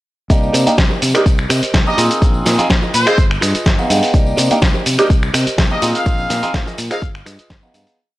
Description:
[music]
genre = filtered disco house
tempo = 125 BPM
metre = 4/4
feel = straight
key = C minor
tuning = A4 = 441 Hz
[part]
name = warm grand piano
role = accompaniment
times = 0.3-8.0 s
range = Bb3 to Ab4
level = -18 LUFS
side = right 1 dB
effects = phaser, vintage 12-bit sampler grit, sidechain pumping
[part]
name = overdriven fingered electric bass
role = bass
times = 0.3-7.8 s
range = G1 to C3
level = -20 LUFS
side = equal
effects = tube saturation, sidechain pumping
[part]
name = dusty soul sampler-style drum kit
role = drums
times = 0.3-8.0 s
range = finger snaps, hi-hat, shaker, snare drum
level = -18 LUFS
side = equal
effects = sidechain pumping on hats, sidechain pumping on perc
[part]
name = electronic kick drum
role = drums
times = 0.3-7.6 s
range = none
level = -14 LUFS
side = equal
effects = none
[part]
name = tambourine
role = percussion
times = 0.3-8.0 s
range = none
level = -33 LUFS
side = left 2 dB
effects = sidechain pumping on perc
[part]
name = direct-recorded clean electric guitar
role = riff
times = 0.5-7.9 s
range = F4 to G5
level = -25 LUFS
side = right 2 dB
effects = sidechain pumping
[part]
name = brilliant trumpet section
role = melody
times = 1.9-7.1 s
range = C5 to F5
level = -20 LUFS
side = left 1 dB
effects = sidechain pumping
[sound]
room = little or no reverb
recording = dry, gritty hardware recording, cassette tape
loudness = -12 LUFS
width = side -17 dB against mid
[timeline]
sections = 0.3-8.0 drop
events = drop 0.3-8.0; clean electric guitar fill 3.4-4.1; fade-out 5.4-8.0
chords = 0.3 Cm7; 2.0 Bb7sus4; 3.2 G7b9b13; 4.1 Cm7; 5.8 Bb7sus4; 7.0 G7b9b13

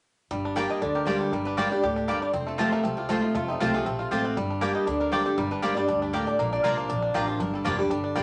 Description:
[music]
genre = bluegrass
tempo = 237 BPM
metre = 4/4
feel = swing 54% on 8ths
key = G minor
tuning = A4 = 440 Hz
[part]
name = bluegrass banjo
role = melody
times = 0.3-8.2 s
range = G3 to G4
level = -34 LUFS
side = equal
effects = none
[part]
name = picked steel-string acoustic guitar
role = accompaniment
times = 0.3-8.2 s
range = F2 to G4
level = -30 LUFS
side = equal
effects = none
[part]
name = upright bass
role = bass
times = 0.3-8.2 s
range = F1 to D2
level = -38 LUFS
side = equal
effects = none
[part]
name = mandolin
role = stabs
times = 0.6-8.2 s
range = Bb3 to Bb5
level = -32 LUFS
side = equal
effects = none
[part]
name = lap resonator guitar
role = melody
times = 0.7-8.0 s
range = Eb4 to F#5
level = -33 LUFS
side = equal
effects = none
[sound]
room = wet studio ambience, RT60 0.5 s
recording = nothing above 10.5 kHz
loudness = -26 LUFS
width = mono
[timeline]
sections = 0.3-8.2 A section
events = none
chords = 0.3 Gm; 2.3 F; 4.4 Gm; 6.4 Bb; 7.4 Gm7

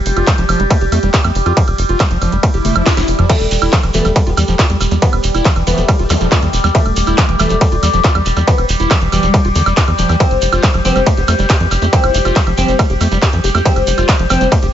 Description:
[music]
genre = psychedelic trance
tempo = 139 BPM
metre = 4/4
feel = straight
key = E phrygian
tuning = A4 = 440 Hz
[part]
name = overtone-sweeping drone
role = sustained chords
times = 0.0-14.7 s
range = G3 to G4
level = -20 LUFS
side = equal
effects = chorus, built-in reverb, phaser, sidechain pumping
[part]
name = tight sequencer bass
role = bass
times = 0.1-14.7 s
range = E1 to F2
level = -16 LUFS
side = equal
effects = none
[part]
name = techno drum kit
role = drums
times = 0.1-14.7 s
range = crash cymbal, handclaps, hi-hat, ride cymbal, snare drum, toms, woodblock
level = -19 LUFS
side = right 2 dB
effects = overdrive
[part]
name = overdriven acid bass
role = riff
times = 0.2-14.7 s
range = D3 to G4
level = -21 LUFS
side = right 1 dB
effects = distortion, auto-pan, sidechain pumping, dub echo
[part]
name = electronic kick drum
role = drums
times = 0.3-14.6 s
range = none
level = -13 LUFS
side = equal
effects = distortion, overdrive
[part]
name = swell and zap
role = sound effects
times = 2.5-3.3, 6.1-6.2 s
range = none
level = -22 LUFS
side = left 3 dB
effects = none
[part]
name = oud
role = melody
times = 3.3-14.5 s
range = G3 to C4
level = -20 LUFS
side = left 2 dB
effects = phaser, sidechain pumping, dub echo
[part]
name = shekere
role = percussion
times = 3.3-14.6 s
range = none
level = -25 LUFS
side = right 5 dB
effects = none
[part]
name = formant-sweep wobble bass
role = second line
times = 3.9-6.3, 10.8-13.9 s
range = A3 to G4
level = -27 LUFS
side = left 3 dB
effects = analog chorus, sidechain pumping, high-pass filter, digital delay
[sound]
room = digital ambience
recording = nothing above 7.7 kHz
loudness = -10 LUFS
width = side -10 dB against mid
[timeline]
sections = 0.0-14.7 A section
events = swell 2.5-3.3; drum fill 2.6-3.3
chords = 0.0 Fsus2; 3.3 Em; 10.2 Fsus2

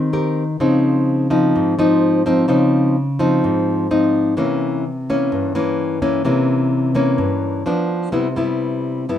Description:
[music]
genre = bossa nova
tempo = 127 BPM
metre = 4/4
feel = straight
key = unclear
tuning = A4 = 440 Hz
[part]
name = nylon-string guitar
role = solo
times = 0.0-9.2 s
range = G2 to Bb4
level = -15 LUFS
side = left 1 dB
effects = none
[sound]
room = light reverb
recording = none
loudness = -15 LUFS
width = side -10 dB against mid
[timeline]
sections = 0.0-8.1 A section; 8.1-9.2 B section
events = none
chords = 0.0 Abmaj9 (rootless); 0.6 Dbmaj9; 4.4 C7b9; 7.7 Bdim/F; 8.1 Cmaj7

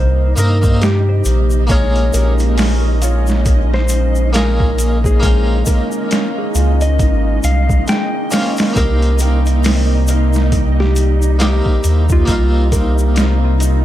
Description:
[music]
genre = trip hop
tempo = 68 BPM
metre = 4/4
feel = swing 59% on 16ths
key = Bb dorian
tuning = A4 = 440 Hz
[part]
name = clean lap steel guitar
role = melody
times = 0.0-12.7 s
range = F4 to G5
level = -23 LUFS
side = left 1 dB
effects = vintage 12-bit sampler grit, tape echo
[part]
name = harpsichord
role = accompaniment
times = 0.0-13.8 s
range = Bb3 to G5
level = -23 LUFS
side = equal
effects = tremolo, tape echo
[part]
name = warbly tape-like pad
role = sustained chords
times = 0.0-13.8 s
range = C3 to Eb4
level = -24 LUFS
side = right 1 dB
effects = chorus, built-in reverb
[part]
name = felt-muted upright piano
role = arpeggios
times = 0.0-13.8 s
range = G3 to Ab4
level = -27 LUFS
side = right 1 dB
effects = dub echo
[part]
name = soft dub sub bass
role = bass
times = 0.0-13.8 s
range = Ab1 to G2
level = -14 LUFS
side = equal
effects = tube saturation
[part]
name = flickering grainy texture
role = texture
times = 0.0-13.8 s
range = Eb4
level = -27 LUFS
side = equal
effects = built-in reverb
[part]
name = boom bap sampler-style drum kit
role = drums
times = 0.4-13.8 s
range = hi-hat, kick drum, snare drum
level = -17 LUFS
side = equal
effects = overdrive, studio reverb
[part]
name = tube shaker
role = percussion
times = 0.4-13.8 s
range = none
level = -29 LUFS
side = left 2 dB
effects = none
[sound]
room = little or no reverb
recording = echo-heavy mix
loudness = -12 LUFS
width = side -13 dB against mid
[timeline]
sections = 0.0-13.8 A section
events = none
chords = 0.0 Cm7; 1.7 Bbm7; 8.8 Cm7

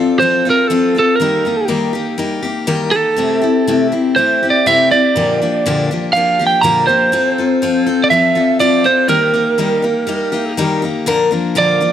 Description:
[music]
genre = rock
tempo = 122 BPM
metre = 4/4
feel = straight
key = unclear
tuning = A4 = 440 Hz
[part]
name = picked steel-string acoustic guitar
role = accompaniment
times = 0.0-11.9 s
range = Bb2 to Bb4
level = -15 LUFS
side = left 4 dB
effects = none
[part]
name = lightly driven lead guitar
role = melody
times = 0.2-11.9 s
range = A4 to Bb5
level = -14 LUFS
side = right 3 dB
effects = tape echo
[sound]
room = light reverb, small room reverb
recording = none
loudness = -12 LUFS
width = side -10 dB against mid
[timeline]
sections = 0.0-11.1 A section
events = none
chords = 0.0 F; 1.2 Eb; 3.2 C6; 5.1 Bb6; 7.1 F; 9.1 Eb; 11.1 Bb

